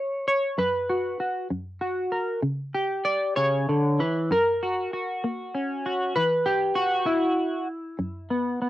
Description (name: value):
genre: folk, solo fingerstyle acoustic guitar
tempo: 64 BPM (dotted quarters)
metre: 6/8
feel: rubato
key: unclear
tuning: A4 = 438 Hz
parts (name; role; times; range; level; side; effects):
- semi-hollow electric guitar; solo; 0.0-8.7 s; F#2 to D5; -23 LUFS; equal; analog chorus, cassette tape
room: light reverb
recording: home recording on cassette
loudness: -23 LUFS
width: side -14 dB against mid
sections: 0.0-8.7 A section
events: none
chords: 0.0 N.C.; 1.5 F#; 2.4 C#dim; 4.3 F#; 6.2 N.C.; 8.0 F#sus4